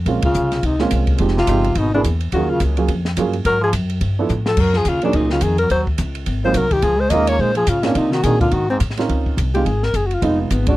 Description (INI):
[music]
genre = jazz, small-group swing and bop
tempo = 213 BPM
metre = 4/4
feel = swing 59% on 8ths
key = Bb minor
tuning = A4 = 439 Hz
[part]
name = upright bass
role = bass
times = 0.0-10.8 s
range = F1 to C3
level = -20 LUFS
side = equal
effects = none
[part]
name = warm upright piano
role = accompaniment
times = 0.1-10.8 s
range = E3 to Bb4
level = -21 LUFS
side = right 5 dB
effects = none
[part]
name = compact cocktail drum kit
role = drums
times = 0.1-10.7 s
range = crash cymbal, hi-hat, kick drum, ride cymbal, snare drum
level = -25 LUFS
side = equal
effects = none
[part]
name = trombone with metal mute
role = second line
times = 0.2-8.8 s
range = Ab2 to Bb3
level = -24 LUFS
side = right 2 dB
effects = none
[part]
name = breathy alto saxophone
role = melody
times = 0.3-10.8 s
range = Ab3 to Eb5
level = -19 LUFS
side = left 2 dB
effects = none
[sound]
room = little or no reverb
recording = dry, close 1970s-style studio recording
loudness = -15 LUFS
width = side -16 dB against mid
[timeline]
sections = 0.1-9.1 A section; 9.1-10.8 B section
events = band accent 0.2; drum fill 4.3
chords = 0.1 Bbm9; 1.2 Fm7; 1.8 E7#11; 2.3 Ebm11; 3.5 Gbadd9; 4.0 G13; 4.6 Gb6; 5.7 Dbsus24; 6.3 Ab13; 6.8 Db69; 8.0 Cm7b5; 8.5 Ab; 9.1 Dbmaj9; 10.2 Fm7b5